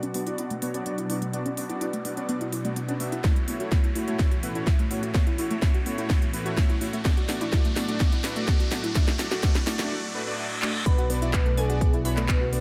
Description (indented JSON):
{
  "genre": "progressive house",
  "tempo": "126 BPM",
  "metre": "4/4",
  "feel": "straight",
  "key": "B minor",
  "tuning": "A4 = 445 Hz",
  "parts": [
    { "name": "evolving wavetable pad", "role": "sustained chords", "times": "0.0-12.6 s", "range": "A2 to F#4", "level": "-39 LUFS", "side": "equal", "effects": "ensemble chorus, built-in reverb, phaser, sidechain pumping" },
    { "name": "soft round pluck", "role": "arpeggios", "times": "0.0-12.6 s", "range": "A3 to F#5", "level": "-36 LUFS", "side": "equal", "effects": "subtle chorus, sidechain pumping, digital delay" },
    { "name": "house drum kit", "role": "drums", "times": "0.0-12.6 s", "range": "handclaps, hi-hat, snare drum", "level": "-35 LUFS", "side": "equal", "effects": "none" },
    { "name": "riser and reverse cymbal", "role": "sound effects", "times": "0.1-10.9 s", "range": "none", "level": "-39 LUFS", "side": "equal", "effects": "none" },
    { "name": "soft supersaw", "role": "stabs", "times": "0.1-12.6 s", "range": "A3 to E5", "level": "-34 LUFS", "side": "equal", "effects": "vintage 12-bit sampler grit, sidechain pumping, low-pass filter, digital delay" },
    { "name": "electronic kick drum", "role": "drums", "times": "3.2-12.4 s", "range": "none", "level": "-25 LUFS", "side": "equal", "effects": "none" },
    { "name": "expressive synth lead", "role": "melody", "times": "10.9-12.6 s", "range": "G#4 to B4", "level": "-34 LUFS", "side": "equal", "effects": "ensemble chorus, sidechain pumping, digital delay" },
    { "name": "glassy wavetable pluck", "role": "second line", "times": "10.9-12.6 s", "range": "G#5 to B5", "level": "-42 LUFS", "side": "equal", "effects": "chorus, sidechain pumping, digital delay" },
    { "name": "fat analog bass", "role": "bass", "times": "10.9-12.6 s", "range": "B1", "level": "-30 LUFS", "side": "equal", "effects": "sidechain pumping" }
  ],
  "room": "light reverb, digital ambience",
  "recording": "none",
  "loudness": "-26 LUFS",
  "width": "mono",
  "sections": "0.0-10.9 A section; 10.9-12.6 B section",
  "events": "build-up 0.0-10.9; riser 0.1-10.9; filter sweep on synth pluck 0.0-10.9; filter sweep on supersaw synth 0.0-10.9; filter sweep on ambient pad 0.0-10.9; drum fill 3.2-9.9, 10.6; break 9.9-10.9; reverse cymbal 9.9-10.9; drop 10.9-12.6",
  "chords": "0.0 Bm; 3.2 A6; 7.0 D/A; 10.9 Bm",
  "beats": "0.38 0.86 | 1.33 1.81 2.29 2.76 | 3.24 3.72 4.19 4.67 | 5.14 5.62 6.10 6.57 | 7.05 7.53 8.00 8.48 | 8.95 9.43 9.91 10.38 | 10.86 11.34 11.81 12.29"
}